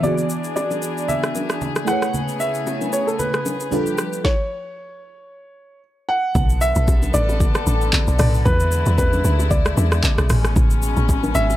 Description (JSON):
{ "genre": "amapiano", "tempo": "114 BPM", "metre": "4/4", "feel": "swing 55% on 16ths", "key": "B dorian", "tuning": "A4 = 440 Hz", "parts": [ { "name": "warm grand piano", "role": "melody", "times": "0.0-11.6 s", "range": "A4 to F#5", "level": "-24 LUFS", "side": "right 1 dB", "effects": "low-pass filter, analog delay" }, { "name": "crystalline FM electric piano", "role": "accompaniment", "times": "0.0-4.3 s", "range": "E3 to D5", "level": "-24 LUFS", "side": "right 1 dB", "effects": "chorus, phaser, low-pass filter" }, { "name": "warm chamber string section", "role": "sustained chords", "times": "0.0-11.6 s", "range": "B2 to A4", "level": "-27 LUFS", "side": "left 3 dB", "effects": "sidechain pumping, low-pass filter" }, { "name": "afro-pop drum kit", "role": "drums", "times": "0.0-11.6 s", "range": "handclaps, hi-hat, kick drum, rim click, shaker, snare drum, toms", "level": "-21 LUFS", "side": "equal", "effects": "none" }, { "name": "congas and bongos", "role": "percussion", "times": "0.0-11.6 s", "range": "none", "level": "-28 LUFS", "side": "left 1 dB", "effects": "none" }, { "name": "deep log drum bass", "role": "bass", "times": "6.4-11.6 s", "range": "G#1 to E2", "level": "-18 LUFS", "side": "equal", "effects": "none" } ], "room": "little or no reverb", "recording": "dry, gritty hardware recording", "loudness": "-17 LUFS", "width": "side -14 dB against mid", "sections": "0.0-6.4 A section; 6.4-11.6 B section", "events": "stop 4.2-6.4; drop 6.4-11.6", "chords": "0.0 E7; 1.9 Amaj9; 3.7 G9; 4.2 N.C.; 6.4 Bm7; 8.5 E7; 10.3 Amaj9" }